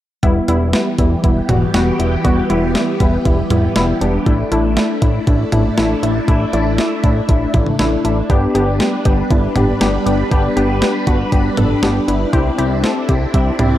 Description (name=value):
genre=synth-pop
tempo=119 BPM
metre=4/4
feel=straight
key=E minor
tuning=A4 = 440 Hz
part: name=warbly dusty pluck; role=accompaniment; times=0.2-13.7 s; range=G3 to A4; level=-17 LUFS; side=left 1 dB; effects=chorus
part: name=phased string machine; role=sustained chords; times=0.7-13.8 s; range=E3 to B4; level=-22 LUFS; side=equal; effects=ensemble chorus, phaser
part: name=fat analog bass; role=bass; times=0.2-13.8 s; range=E1 to C2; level=-18 LUFS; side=equal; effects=none
part: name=clean 12-bit digital drum machine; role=drums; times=0.2-13.7 s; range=hi-hat, kick drum, snare drum, toms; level=-17 LUFS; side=equal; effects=overdrive
room=light reverb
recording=dark, warm production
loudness=-13 LUFS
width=side -13 dB against mid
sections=0.2-13.8 A section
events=none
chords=0.2 Em; 4.3 Asus4; 8.3 G; 12.3 Cadd9